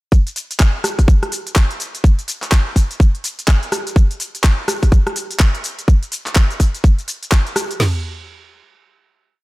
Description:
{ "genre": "house", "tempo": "125 BPM", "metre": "4/4", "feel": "swing 61% on 16ths", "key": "none", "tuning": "none", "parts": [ { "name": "garage drum kit", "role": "drums", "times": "0.1-7.9 s", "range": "crash cymbal, kick drum, snare drum, toms", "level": "-12 LUFS", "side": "equal", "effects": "none" }, { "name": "garage drum kit", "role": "drums", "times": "0.1-7.8 s", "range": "handclaps, hi-hat, rim click, shaker", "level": "-21 LUFS", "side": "equal", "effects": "none" } ], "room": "little or no reverb", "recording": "none", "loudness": "-14 LUFS", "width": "side -21 dB against mid", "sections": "0.1-7.8 drop; 7.8-9.4 final hit", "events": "drop 0.1-7.8", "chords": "none", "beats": "| 0.12 0.60 1.08 1.56 | 2.04 2.52 3.00 3.48 | 3.96 4.44 4.92 5.40 | 5.88 6.36 6.84 7.32 | 7.80" }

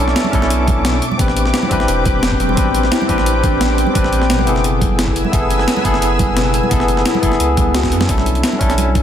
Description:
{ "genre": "liquid drum and bass", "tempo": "174 BPM", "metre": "4/4", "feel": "straight", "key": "unclear", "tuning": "A4 = 440 Hz", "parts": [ { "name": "barky tine electric piano", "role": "accompaniment", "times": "0.0-9.0 s", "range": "B3 to B4", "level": "-18 LUFS", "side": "left 1 dB", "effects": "fast tremolo, vintage 12-bit sampler grit, ping-pong delay" }, { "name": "lush unison pad", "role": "sustained chords", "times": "0.0-8.1 s", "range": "C4 to E6", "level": "-23 LUFS", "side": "left 1 dB", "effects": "chorus, sidechain pumping" }, { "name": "harp-like synth pluck", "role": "arpeggios", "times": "0.0-9.0 s", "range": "B2 to B4", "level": "-23 LUFS", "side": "right 1 dB", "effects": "chorus, phaser, ping-pong delay" }, { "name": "saturated sub bass", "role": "bass", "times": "0.0-9.0 s", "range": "E1 to F#2", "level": "-19 LUFS", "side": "equal", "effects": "none" }, { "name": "breakbeat sampler-style drum kit", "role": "drums", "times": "0.1-9.0 s", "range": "hi-hat, snare drum", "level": "-21 LUFS", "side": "equal", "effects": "overdrive" }, { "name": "congas", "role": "percussion", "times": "0.2-9.0 s", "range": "none", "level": "-26 LUFS", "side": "right 4 dB", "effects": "none" }, { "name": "electronic kick drum", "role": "drums", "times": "0.3-9.0 s", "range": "none", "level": "-19 LUFS", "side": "equal", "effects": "overdrive" } ], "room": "light reverb", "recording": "dense, heavily limited modern master", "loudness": "-13 LUFS", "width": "side -10 dB against mid", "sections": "0.0-8.1 A section", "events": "drop 0.0-8.1; drum fill 7.8", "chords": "0.0 Bm11; 1.0 Am11; 4.6 F#m11; 8.1 Bm11", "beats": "0.16 0.50 0.85 | 1.19 1.54 1.88 2.23 | 2.57 2.92 3.26 3.61 | 3.95 4.30 4.64 4.99 | 5.33 5.68 6.02 6.37 | 6.71 7.05 7.40 7.75 | 8.09 8.43 8.78" }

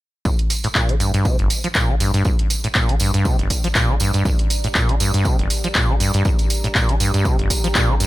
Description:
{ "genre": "acid house", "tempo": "120 BPM", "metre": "4/4", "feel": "swing 56% on 16ths", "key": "G minor", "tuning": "A4 = 440 Hz", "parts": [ { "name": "acid bass, saw", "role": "riff", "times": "0.3-8.1 s", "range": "G1 to F3", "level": "-20 LUFS", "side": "equal", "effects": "overdrive, wide subtle chorus, ping-pong delay" }, { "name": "electronic kick drum", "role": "drums", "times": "0.3-7.9 s", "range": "none", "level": "-19 LUFS", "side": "equal", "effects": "none" }, { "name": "tambourine", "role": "percussion", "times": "0.3-8.1 s", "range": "none", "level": "-28 LUFS", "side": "right 3 dB", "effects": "none" }, { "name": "deep dark ambient pad", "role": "texture", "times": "2.5-8.1 s", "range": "G4 to Bb5", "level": "-32 LUFS", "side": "equal", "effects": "chorus, built-in reverb, sidechain pumping" }, { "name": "punchy analog drum machine", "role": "drums", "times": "0.4-8.1 s", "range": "handclaps, hi-hat", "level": "-22 LUFS", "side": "equal", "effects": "none" } ], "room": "light reverb", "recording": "none", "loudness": "-16 LUFS", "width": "side -17 dB against mid", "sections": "0.3-8.1 A section", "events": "fade-in on ambient pad 0.3-8.1", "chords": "0.3 Gm", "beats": "| 0.25 0.75 1.25 1.75 | 2.25 2.75 3.25 3.75 | 4.25 4.75 5.25 5.75 | 6.25 6.75 7.25 7.75" }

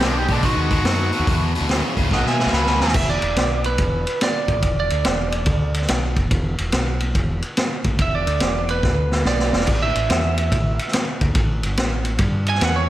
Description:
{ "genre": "blues rock power trio and southern rock", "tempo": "143 BPM", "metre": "4/4", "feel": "swing 66% on 8ths", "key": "E mixolydian", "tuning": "A4 = 440 Hz", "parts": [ { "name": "mellow harmonica", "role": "melody", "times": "0.0-3.0 s", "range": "D4 to B5", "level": "-25 LUFS", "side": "equal", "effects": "overdrive" }, { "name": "lightly driven lead guitar", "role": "second line", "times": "0.0-12.9 s", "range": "A3 to G#5", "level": "-24 LUFS", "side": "right 4 dB", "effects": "slapback echo" }, { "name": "distorted electric guitar", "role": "riff", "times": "0.0-2.9 s", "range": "E2 to G#3", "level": "-24 LUFS", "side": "left 2 dB", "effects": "overdrive" }, { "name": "growling fingered electric bass", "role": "bass", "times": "0.0-12.9 s", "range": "E1 to B2", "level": "-22 LUFS", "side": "equal", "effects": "overdrive" }, { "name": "vintage drum kit", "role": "drums", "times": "0.0-12.7 s", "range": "crash cymbal, hi-hat, kick drum, ride cymbal, snare drum", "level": "-21 LUFS", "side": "equal", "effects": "none" } ], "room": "moderate scoring stage reverb, RT60 1.7 s", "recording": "big arena sound", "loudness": "-17 LUFS", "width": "side -14 dB against mid", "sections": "0.0-3.0 A section; 3.0-12.9 B section", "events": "drum fill 2.1-3.0, 8.8-9.7; lead electric guitar solo 3.0-12.9", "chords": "0.0 B7; 1.3 E5; 2.1 B; 3.0 Dsus2/E; 3.4 Bm; 3.8 E5; 5.5 N.C.; 5.9 E5; 6.7 N.C.; 7.2 E7(no3); 8.8 Bm/D; 9.3 E5; 9.7 A5; 10.1 N.C.; 10.5 A5; 12.2 N.C.", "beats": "0.02 0.44 0.86 | 1.28 1.70 2.12 2.54 | 2.96 3.38 3.79 4.21 | 4.63 5.05 5.47 5.89 | 6.31 6.73 7.15 7.58 | 8.00 8.41 8.84 9.26 | 9.68 10.10 10.52 10.94 | 11.36 11.78 12.20 12.62" }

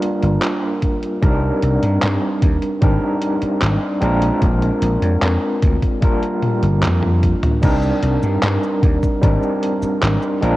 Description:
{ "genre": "vaporwave", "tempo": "75 BPM", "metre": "4/4", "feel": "straight", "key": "C minor", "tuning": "A4 = 440 Hz", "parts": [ { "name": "overdriven tine electric piano", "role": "accompaniment", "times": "0.0-10.6 s", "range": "G3 to Bb4", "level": "-19 LUFS", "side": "equal", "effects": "medium tremolo, lush chorus, vintage 12-bit sampler grit, analog delay" }, { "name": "detuned 8-bit digital drum machine", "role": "drums", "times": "0.0-10.6 s", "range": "cabasa, crash cymbal, handclaps, hi-hat, toms", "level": "-23 LUFS", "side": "equal", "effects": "overdrive" }, { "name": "vintage slap bass", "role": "bass", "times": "0.2-10.6 s", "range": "G1 to G2", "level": "-18 LUFS", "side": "equal", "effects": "none" }, { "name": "electronic kick drum", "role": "drums", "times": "0.8-9.4 s", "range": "none", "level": "-17 LUFS", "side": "equal", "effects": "overdrive" } ], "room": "little or no reverb", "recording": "worn, warbling old tape, cassette tape, warbly pitch drift", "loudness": "-15 LUFS", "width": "side -17 dB against mid", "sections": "0.0-7.6 A section; 7.6-10.6 B section", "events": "drum fill 6.4-7.6", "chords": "0.0 Gm7; 1.2 Cm7; 2.8 Abmaj9#11; 4.0 Bb7; 6.0 Gm7; 7.6 Cm7; 9.2 Abmaj9#11", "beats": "0.42 | 1.22 2.02 2.82 3.62 | 4.42 5.22 6.02 6.82 | 7.62 8.42 9.22 10.02" }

